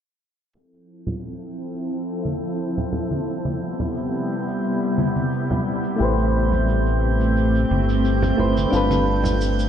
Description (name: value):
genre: sunset chillout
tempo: 88 BPM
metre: 4/4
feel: swing 53% on 16ths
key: C major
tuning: A4 = 441 Hz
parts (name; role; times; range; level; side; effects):
- shimmering ambient pad; sustained chords; 1.2-9.7 s; C3 to B4; -24 LUFS; equal; chorus, built-in reverb
- shaker; drums; 0.5-9.7 s; none; -40 LUFS; right 1 dB; none
- drifting glass-harmonics texture; texture; 2.9-9.7 s; G6; -35 LUFS; right 4 dB; chorus, built-in reverb
- congas; percussion; 1.1-9.4 s; none; -28 LUFS; right 1 dB; none
- soft electric-piano-like synth keys; accompaniment; 6.0-9.7 s; G3 to C5; -22 LUFS; equal; chorus, auto-pan, vintage 12-bit sampler grit, ping-pong delay
- round analog bass; bass; 6.0-9.7 s; G1 to A1; -21 LUFS; equal; tube saturation
room: wet lush hall reverb, RT60 2.9 s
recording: dreamy mix soaked in reverb, low-pass filter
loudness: -19 LUFS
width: side -9 dB against mid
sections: 0.5-9.7 A section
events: filter sweep 0.5-9.7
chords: 0.5 Fmaj7; 2.9 Cmaj7; 6.0 Am9; 8.7 G9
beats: | 0.55 1.23 1.91 2.59 | 3.27 3.96 4.64 5.32 | 6.00 6.68 7.37 8.05 | 8.73 9.41